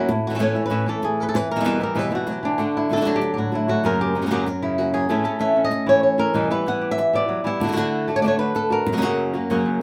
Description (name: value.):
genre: flamenco.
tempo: 191 BPM.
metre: 4/4.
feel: straight.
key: unclear.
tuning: A4 = 440 Hz.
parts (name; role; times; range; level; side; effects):
flamenco guitar; melody; 0.0-9.8 s; F#2 to F#5; -23 LUFS; equal; none.
flamenco guitar; stabs; 0.0-9.8 s; E2 to F#4; -27 LUFS; equal; none.
room: moderate studio reverb, RT60 0.6 s.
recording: none.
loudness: -21 LUFS.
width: mono.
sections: 0.1-9.8 A section.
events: none.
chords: 0.1 A; 1.3 Em; 2.6 D; 3.8 F#; 5.1 A; 6.4 Em; 7.6 D; 8.9 F#.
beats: | 0.09 0.41 0.72 1.03 | 1.34 1.66 1.97 2.28 | 2.59 2.91 3.22 3.53 | 3.85 4.16 4.47 4.79 | 5.10 5.41 5.73 6.04 | 6.36 6.67 6.98 7.30 | 7.61 7.93 8.24 8.56 | 8.87 9.19 9.50 9.82.